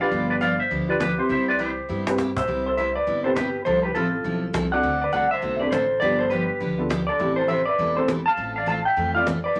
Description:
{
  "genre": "country, western swing",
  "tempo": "203 BPM",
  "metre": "4/4",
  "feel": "swing 61% on 8ths",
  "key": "C major",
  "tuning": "A4 = 440 Hz",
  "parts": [
    { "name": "clean lap steel guitar", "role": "melody", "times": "0.0-9.6 s", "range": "F4 to A5", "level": "-25 LUFS", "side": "equal", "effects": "none" },
    { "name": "honky-tonk upright piano", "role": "accompaniment", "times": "0.0-9.3 s", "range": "A3 to C5", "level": "-30 LUFS", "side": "equal", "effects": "none" },
    { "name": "upright bass", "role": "bass", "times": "0.0-9.6 s", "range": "E1 to G2", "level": "-34 LUFS", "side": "equal", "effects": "none" },
    { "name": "picked steel-string acoustic guitar", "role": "accompaniment", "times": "0.1-9.6 s", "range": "C3 to A4", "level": "-32 LUFS", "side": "equal", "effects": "none" },
    { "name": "cajon", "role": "drums", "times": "0.4-9.4 s", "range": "none", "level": "-32 LUFS", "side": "equal", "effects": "none" }
  ],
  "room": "wet studio reverb, RT60 0.6 s",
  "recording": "none",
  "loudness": "-23 LUFS",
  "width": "mono",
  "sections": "0.0-2.5 A section; 2.5-9.6 A section",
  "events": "drum fill 1.9",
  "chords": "0.1 G7; 1.3 Cmaj7; 3.7 Fmaj7; 4.8 D7; 6.0 G7; 7.2 Am7; 8.4 Fmaj7/A"
}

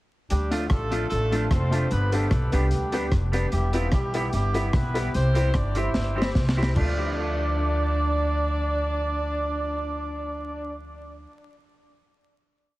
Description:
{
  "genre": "ska",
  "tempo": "148 BPM",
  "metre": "4/4",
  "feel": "swing 53% on 8ths",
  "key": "D dorian",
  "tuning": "A4 = 440 Hz",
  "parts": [
    { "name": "warm horn section", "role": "melody", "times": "0.3-10.7 s", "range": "F3 to E5", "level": "-29 LUFS", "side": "right 1 dB", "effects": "analog delay, plate reverb" },
    { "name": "upright bass", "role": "bass", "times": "0.3-11.2 s", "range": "E1 to D2", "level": "-26 LUFS", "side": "equal", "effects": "none" },
    { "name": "crunchy breakbeat drum kit", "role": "drums", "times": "0.3-6.9 s", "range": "crash cymbal, hi-hat, kick drum, rim click, snare drum", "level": "-28 LUFS", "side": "equal", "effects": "none" },
    { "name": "clean electric guitar", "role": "accompaniment", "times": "0.5-11.3 s", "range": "F3 to G4", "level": "-35 LUFS", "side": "right 2 dB", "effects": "analog delay, plate reverb" },
    { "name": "warm upright piano", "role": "stabs", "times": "0.5-11.2 s", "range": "A3 to D5", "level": "-31 LUFS", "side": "left 1 dB", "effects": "analog delay, plate reverb" }
  ],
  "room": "light reverb",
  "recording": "heavily compressed radio sound, vinyl crackle",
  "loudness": "-22 LUFS",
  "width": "side -18 dB against mid",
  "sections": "0.3-6.8 head; 6.8-10.0 final chord",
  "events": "drum fill 6.0-6.8",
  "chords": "0.3 Dm; 1.9 G; 3.5 Em; 5.1 C; 6.8 Dm"
}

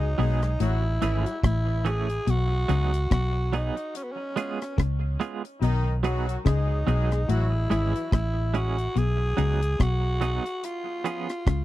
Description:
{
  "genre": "roots reggae",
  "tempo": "72 BPM",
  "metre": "4/4",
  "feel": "swing 58% on 16ths",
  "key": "unclear",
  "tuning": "A4 = 439 Hz",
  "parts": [
    { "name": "growling tenor saxophone", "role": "melody", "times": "0.0-11.6 s", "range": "B3 to G#4", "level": "-31 LUFS", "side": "equal", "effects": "tape echo" },
    { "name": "warm horn section", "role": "second line", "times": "0.0-8.0 s", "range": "D#3 to G#4", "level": "-34 LUFS", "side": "left 2 dB", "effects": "tube saturation, tape echo" },
    { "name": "vintage muted fingered electric bass", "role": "bass", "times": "0.0-11.6 s", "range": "G#1 to C#2", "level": "-25 LUFS", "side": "equal", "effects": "none" },
    { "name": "clean electric guitar", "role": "accompaniment", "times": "0.2-11.3 s", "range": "E3 to G#4", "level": "-33 LUFS", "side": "right 7 dB", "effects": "tremolo, tape echo" },
    { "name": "clean electric guitar", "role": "riff", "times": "0.2-11.6 s", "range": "G#2 to C#3", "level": "-30 LUFS", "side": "left 6 dB", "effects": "none" },
    { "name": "deep reggae drum kit", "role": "drums", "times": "0.2-11.6 s", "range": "hi-hat, kick drum, rim click", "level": "-26 LUFS", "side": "equal", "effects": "none" }
  ],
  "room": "little or no reverb",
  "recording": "dry, close 1970s-style studio recording",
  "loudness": "-23 LUFS",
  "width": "side -15 dB against mid",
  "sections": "0.0-11.6 A section",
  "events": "none",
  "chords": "0.0 B6; 0.6 Amaj7; 2.3 B6; 3.9 C#7; 5.6 B6; 7.3 Amaj7; 9.0 B6; 10.6 C#7"
}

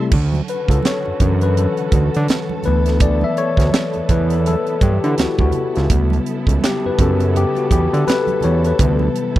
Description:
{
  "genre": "R&B, neo-soul",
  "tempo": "83 BPM",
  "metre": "4/4",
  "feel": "swing 59% on 16ths",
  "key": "D major",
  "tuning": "A4 = 441 Hz",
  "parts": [
    { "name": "tine electric piano", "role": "accompaniment", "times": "0.0-9.4 s", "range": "C3 to E5", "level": "-19 LUFS", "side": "left 4 dB", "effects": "none" },
    { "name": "dark studio string section", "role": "sustained chords", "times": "0.0-9.4 s", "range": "C3 to A4", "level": "-28 LUFS", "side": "right 4 dB", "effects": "none" },
    { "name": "fat analog bass", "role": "bass", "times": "0.1-9.4 s", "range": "C#2 to D3", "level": "-17 LUFS", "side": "right 1 dB", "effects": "none" },
    { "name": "tight funk drum kit", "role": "drums", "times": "0.1-9.4 s", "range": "crash cymbal, handclaps, hi-hat, kick drum, snare drum", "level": "-17 LUFS", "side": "right 1 dB", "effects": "none" },
    { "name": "congas", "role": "percussion", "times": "0.1-9.1 s", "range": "none", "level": "-29 LUFS", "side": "right 8 dB", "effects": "none" }
  ],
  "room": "little or no reverb",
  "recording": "dry, close 1970s-style studio recording",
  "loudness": "-14 LUFS",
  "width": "side -14 dB against mid",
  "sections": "0.1-9.4 A section",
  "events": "tine electric piano solo 0.1-9.4",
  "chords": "0.1 Dmaj7; 2.6 G69/D; 8.8 Am7"
}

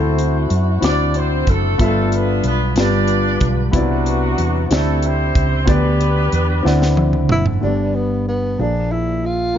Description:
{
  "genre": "slow gospel",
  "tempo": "62 BPM (dotted quarters)",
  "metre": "6/8",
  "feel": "straight",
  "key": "G major",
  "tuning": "A4 = 440 Hz",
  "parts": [
    { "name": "mellow horn section", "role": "melody", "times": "0.0-7.0 s", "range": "F#3 to D5", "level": "-21 LUFS", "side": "equal", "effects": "none" },
    { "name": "warm upright piano", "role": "accompaniment", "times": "0.0-9.6 s", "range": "G2 to F#5", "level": "-20 LUFS", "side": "left 2 dB", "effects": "none" },
    { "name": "hollow-body short-scale fingered electric bass", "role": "bass", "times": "0.0-9.5 s", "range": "F#1 to F#2", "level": "-18 LUFS", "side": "equal", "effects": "none" },
    { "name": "crisp fusion drum kit", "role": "drums", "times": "0.2-7.6 s", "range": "hi-hat, kick drum, snare drum, toms", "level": "-21 LUFS", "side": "right 1 dB", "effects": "none" },
    { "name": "mellow tenor saxophone", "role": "melody", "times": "7.3-9.6 s", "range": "B3 to F4", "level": "-21 LUFS", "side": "right 1 dB", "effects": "none" }
  ],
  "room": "light reverb",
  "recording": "dark, warm production, nothing above 7.5 kHz",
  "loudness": "-14 LUFS",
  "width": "side -9 dB against mid",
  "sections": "0.0-7.6 A section; 7.6-9.6 B section",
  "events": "drum fill 6.6-7.6",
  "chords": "0.0 D9; 1.8 G13; 2.8 G7; 3.7 Cmaj9#11; 4.7 D9sus4; 5.7 G/D; 6.6 D9; 7.6 G; 8.6 Bb7"
}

